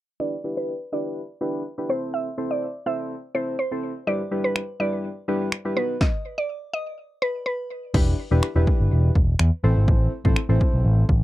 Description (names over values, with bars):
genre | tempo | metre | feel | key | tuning
dance-pop | 124 BPM | 4/4 | straight | E minor | A4 = 438 Hz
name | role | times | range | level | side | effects
mallet-like synth pluck | melody | 0.2-7.8 s | B4 to E5 | -28 LUFS | right 2 dB | chorus, sidechain pumping, low-pass filter, tape echo
soft electric-piano-like synth keys | accompaniment | 0.2-11.1 s | G3 to C5 | -27 LUFS | left 1 dB | chorus, sidechain pumping, low-pass filter
punchy analog drum machine | drums | 4.6-11.2 s | crash cymbal, finger snaps, kick drum, snare drum | -21 LUFS | equal | none
picked electric bass with an envelope filter | bass | 7.9-11.2 s | E1 to E2 | -19 LUFS | equal | sidechain pumping
room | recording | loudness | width
little or no reverb | dry, close 1970s-style studio recording | -21 LUFS | side -16 dB against mid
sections
0.2-7.9 A section; 7.9-11.2 B section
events
filter sweep 0.2-7.9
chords
0.2 Em7; 1.9 Am; 4.1 Em7/G; 5.8 B; 7.9 Em7; 9.6 Am